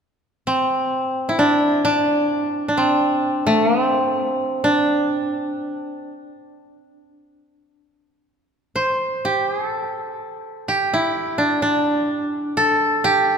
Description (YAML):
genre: japanese traditional, Japanese chamber music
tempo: free time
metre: none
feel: none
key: D suspended pentatonic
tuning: A4 = 441 Hz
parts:
  - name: koto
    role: solo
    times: 0.5-13.4 s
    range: C4 to C5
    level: -18 LUFS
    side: equal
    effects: none
room: wet church reverb, RT60 2.7 s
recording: minimal, uncompressed stereo recording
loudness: -18 LUFS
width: side -6 dB against mid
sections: 0.0-8.8 A section; 8.8-13.4 B section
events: none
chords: none